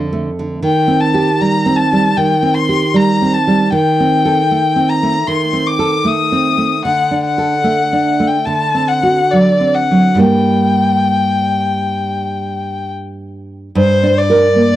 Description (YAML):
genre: romantic duo for violin and classical guitar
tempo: 66-81 BPM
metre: 4/4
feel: rubato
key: G minor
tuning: A4 = 442 Hz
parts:
  - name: nylon-string guitar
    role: accompaniment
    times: 0.0-14.8 s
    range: F2 to Bb4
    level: -14 LUFS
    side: right 2 dB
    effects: none
  - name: rich violin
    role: melody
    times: 0.7-14.8 s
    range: C5 to Eb6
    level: -15 LUFS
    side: left 4 dB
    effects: none
room: small room ambience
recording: dry, close 1970s-style studio recording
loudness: -11 LUFS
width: side -13 dB against mid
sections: 0.0-13.8 A section; 13.8-14.8 A section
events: none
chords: 0.0 Dm/F; 0.6 Cm/Eb; 3.7 Am7b5/Eb; 6.8 D; 8.5 D7; 10.2 Gm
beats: | 0.64 1.40 2.17 2.94 | 3.72 4.50 5.26 6.05 | 6.85 7.64 8.47 9.32 | 10.21 11.12 12.02 12.90 | 13.76 14.57